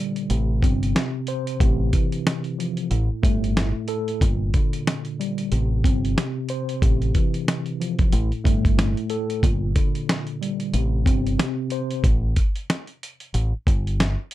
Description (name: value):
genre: hip hop, boom-bap hip-hop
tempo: 92 BPM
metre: 4/4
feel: swing 60% on 16ths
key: G dorian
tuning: A4 = 440 Hz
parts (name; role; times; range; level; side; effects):
- mellow tine electric piano; accompaniment; 0.0-12.1 s; A2 to C5; -26 LUFS; equal; medium stereo tremolo, high-pass filter, low-pass filter
- dusty soul sampler-style drum kit; drums; 0.2-14.3 s; hi-hat, kick drum, snare drum; -22 LUFS; equal; none
- deep dub fingered electric bass; bass; 0.3-14.2 s; G1 to A1; -22 LUFS; equal; none
room: little or no reverb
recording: dark, warm production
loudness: -20 LUFS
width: side -14 dB against mid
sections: 0.0-14.3 A section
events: none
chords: 0.3 Am; 1.6 Fmaj7/A; 2.9 Gsus2; 4.2 Gm; 5.5 Am; 6.8 Fmaj7/A; 8.1 Gsus2; 9.4 Gm; 10.7 Am; 12.0 N.C.; 13.3 Gsus2